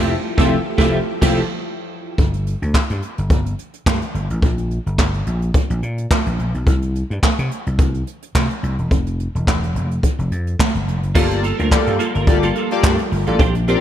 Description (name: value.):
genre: early-eighties boogie funk.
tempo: 107 BPM.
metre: 4/4.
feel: swing 56% on 16ths.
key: G dorian.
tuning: A4 = 440 Hz.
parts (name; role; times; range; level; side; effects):
chorused polysynth; accompaniment; 0.0-1.4, 11.2-13.8 s; Bb3 to E5; -21 LUFS; left 2 dB; none.
string machine, full ensemble; sustained chords; 0.0-2.2, 11.2-13.8 s; F3 to Bb4; -27 LUFS; equal; ensemble chorus.
clean electric guitar; riff; 0.0-1.4, 11.1-13.8 s; A3 to C5; -24 LUFS; right 4 dB; ensemble chorus.
vintage slap bass; bass; 0.0-13.7 s; E1 to C3; -20 LUFS; equal; none.
jazz brush drum kit; drums; 0.4-13.8 s; crash cymbal, handclaps, hi-hat, kick drum, snare drum; -18 LUFS; equal; gated reverb.
room: studio ambience.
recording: none.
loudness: -16 LUFS.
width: side -11 dB against mid.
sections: 0.0-2.2 A section; 2.2-11.2 B section; 11.2-13.8 A section.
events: band accent 0.0-2.2.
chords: 0.0 Fmaj9; 2.2 N.C.; 4.4 Gm; 6.7 N.C.; 11.2 Gm9.